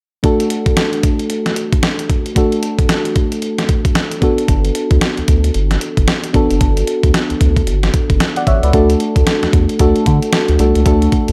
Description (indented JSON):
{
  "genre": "R&B, new jack swing",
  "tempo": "113 BPM",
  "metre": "4/4",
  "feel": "swing 61% on 16ths",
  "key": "D major",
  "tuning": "A4 = 440 Hz",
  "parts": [
    { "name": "mellow FM electric piano", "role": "accompaniment", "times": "0.2-11.3 s", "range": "A3 to F#5", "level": "-19 LUFS", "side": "equal", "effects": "chorus" },
    { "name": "crisp 8-bit digital drum machine", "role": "drums", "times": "0.2-11.3 s", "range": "hi-hat, kick drum, snare drum", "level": "-18 LUFS", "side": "equal", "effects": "none" },
    { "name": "round analog bass", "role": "bass", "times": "4.5-11.3 s", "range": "F#1 to D3", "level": "-17 LUFS", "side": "equal", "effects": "none" }
  ],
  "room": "light reverb, digital ambience",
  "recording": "none",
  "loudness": "-14 LUFS",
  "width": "mono",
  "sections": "0.2-8.7 A section; 8.7-11.3 B section",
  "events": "none",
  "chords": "0.2 D; 4.2 Gmaj7; 8.7 D"
}